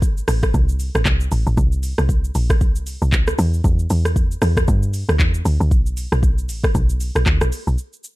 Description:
amapiano; 116 BPM; 4/4; swing 58% on 16ths; A4 = 440 Hz
woody log drum bass; bass; 0.0-7.8 s; A1 to G2; -18 LUFS; equal
afro-pop drum kit; drums; 0.0-8.2 s; handclaps, hi-hat, kick drum, rim click, shaker; -19 LUFS; equal; overdrive
digital ambience; dark, warm production; -16 LUFS; side -19 dB against mid
0.0-7.8 A section
drop 0.0-7.8

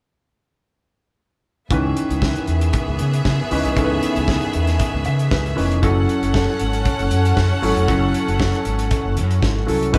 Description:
disco; 117 BPM; 4/4; straight; C# minor; A4 = 440 Hz
clear studio string section; second line; 1.7-9.9 s; B3 to F#5; -27 LUFS; equal
warm grand piano; accompaniment; 1.7-10.0 s; D#3 to E5; -25 LUFS; equal
overdriven fingered electric bass; bass; 1.7-10.0 s; E#1 to C#3; -23 LUFS; equal
warm soul drum kit; drums; 1.7-10.0 s; hi-hat, kick drum, snare drum; -26 LUFS; equal
moderate studio reverb, RT60 0.7 s; band playing live in one room; -19 LUFS; mono
1.7-10.0 A section
grand piano fill 4.8-5.8
1.7 C#m9; 5.8 F#m7

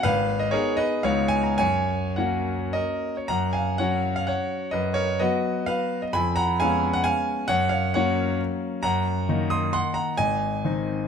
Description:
classical, romantic triple-time dance for piano with dotted rhythms; 101-142 BPM; 3/4; rubato; F# major; A4 = 440 Hz
clear grand piano; solo; 0.0-11.1 s; G#1 to Eb6; -22 LUFS; equal
moderate recital hall reverb, RT60 1.5 s; close, detailed microphones; -22 LUFS; side -7 dB against mid
0.0-3.3 A section; 3.3-11.1 B section
0.0 G#m; 1.0 C#9; 1.6 F#; 3.3 F#5; 4.7 B/F#; 6.1 C#7/E#; 7.5 F#; 8.8 Ebm/Gb; 10.2 Ab

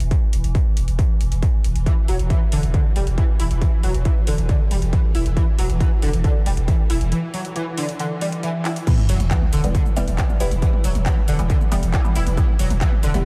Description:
driving peak-time techno; 137 BPM; 4/4; straight; E minor; A4 = 443 Hz
saturated sub bass; bass; 0.0-13.2 s; E1; -24 LUFS; equal; overdrive, sidechain pumping, low-pass filter
swarming drone; drone; 0.0-13.2 s; E3; -34 LUFS; equal; built-in reverb, phaser, sidechain pumping
techno drum kit; drums; 0.0-13.2 s; crash cymbal, handclaps, hi-hat, shaker, toms; -33 LUFS; equal
electronic kick drum; drums; 0.1-12.9 s; -21 LUFS; equal; distortion
overdriven synth lead; riff; 1.9-13.1 s; D3 to E4; -29 LUFS; equal; distortion, ensemble chorus, sidechain pumping, tape echo
filtered dub chord stab; stabs; 8.9-13.2 s; E3 to B3; -31 LUFS; equal; phaser, lush chorus, sidechain pumping, analog delay
sub drop; sound effects; 8.9-10.6 s; -28 LUFS; equal
light reverb, digital ambience; -20 LUFS; mono
0.0-8.9 A section; 8.9-13.2 B section
break 7.1-8.9; drum fill 8.7; drop 8.9-13.2; impact 8.9-10.6
0.0 N.C.; 8.9 Em

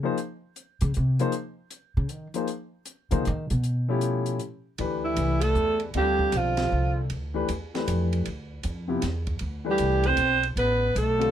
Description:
modal jazz; 156 BPM; 3/4; swing 65% on 8ths; D dorian from 4.8 s; A4 = 440 Hz
warm grand piano; accompaniment; 0.0-11.3 s; C3 to C5; -29 LUFS; left 5 dB
upright bass; bass; 0.0-11.3 s; A1 to Eb3; -27 LUFS; equal
compact cocktail drum kit; drums; 0.2-11.3 s; hi-hat, kick drum, ride cymbal, snare drum; -38 LUFS; right 2 dB
growling alto saxophone; melody; 5.0-7.0, 9.7-11.3 s; E4 to C5; -24 LUFS; right 3 dB
mellow bass clarinet; second line; 5.0-7.0, 9.7-11.3 s; E3 to C4; -31 LUFS; left 2 dB
little or no reverb; close, detailed microphones; -24 LUFS; side -10 dB against mid
0.0-4.8 A section; 4.8-11.3 B section
upright bass solo 0.0-4.8
0.0 Bbm11; 3.6 A7b13; 4.8 Dm9; 9.4 F (rootless)

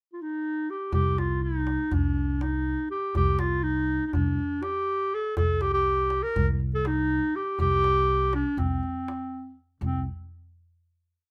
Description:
Turkish makam ensemble; 243 BPM (eighths); 9/8; straight; C makam huseyni; A4 = 439 Hz
warm clarinet; melody; 0.1-10.0 s; C4 to Bb4; -29 LUFS; equal
upright bass; bass; 0.9-10.0 s; C2; -31 LUFS; equal
darbuka; percussion; 0.9-10.0 s; -33 LUFS; equal
light reverb; -27 LUFS; mono
0.0-0.9 pickup bar; 0.9-9.8 A section; 9.8-11.3 final note

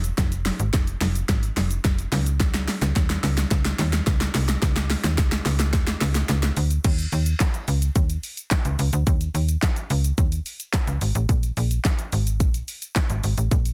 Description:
dance-pop; 108 BPM; 4/4; straight; A4 = 442 Hz
slap-like FM bass; bass; 0.0-13.7 s; Fb1 to Eb2; -25 LUFS; equal; sidechain pumping
pop drum kit; drums; 0.0-13.7 s; crash cymbal, handclaps, hi-hat, kick drum, shaker, snare drum; -25 LUFS; equal
little or no reverb; dense, heavily limited modern master; -23 LUFS; mono
0.0-6.8 A section; 6.8-13.7 B section
build-up 0.0-6.8; drum fill 0.0-6.8; drop 6.8-13.7

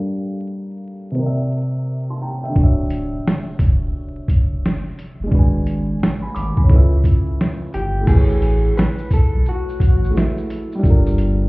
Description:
lo-fi hip hop; 87 BPM; 4/4; swing 63% on 16ths; A major; A4 = 438 Hz
felt-muted upright piano; accompaniment; 0.0-11.5 s; C3 to D6; -23 LUFS; equal; cassette tape, low-pass filter
warm sub bass; bass; 2.6-11.5 s; D1 to C#2; -18 LUFS; equal
lo-fi sampler-style drum kit; drums; 2.6-11.4 s; crash cymbal, hi-hat, kick drum, shaker, snare drum; -15 LUFS; equal
electric guitar through a small old amp; melody; 7.7-10.1 s; F#4 to B4; -26 LUFS; left 1 dB; low-pass filter, analog delay
little or no reverb; heard muffled through a wall, club reverb, vinyl crackle, EQ; -16 LUFS; side -23 dB against mid
0.0-8.1 A section; 8.1-11.5 B section
filter sweep on felt piano 0.0-8.1
0.0 Gm7; 1.2 C9; 2.6 Dmaj9; 5.3 G#m7b5; 6.7 C#7alt; 8.1 Amaj13; 10.8 Gm7

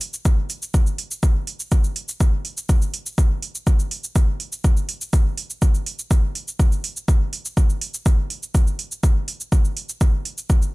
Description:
techno; 123 BPM; 4/4; straight
electronic hi-hat and cabasa; drums; 0.0-10.7 s; -29 LUFS; right 2 dB
electronic kick drum; drums; 0.3-10.6 s; -17 LUFS; equal; overdrive
little or no reverb; -19 LUFS; side -22 dB against mid
0.7-10.7 A section

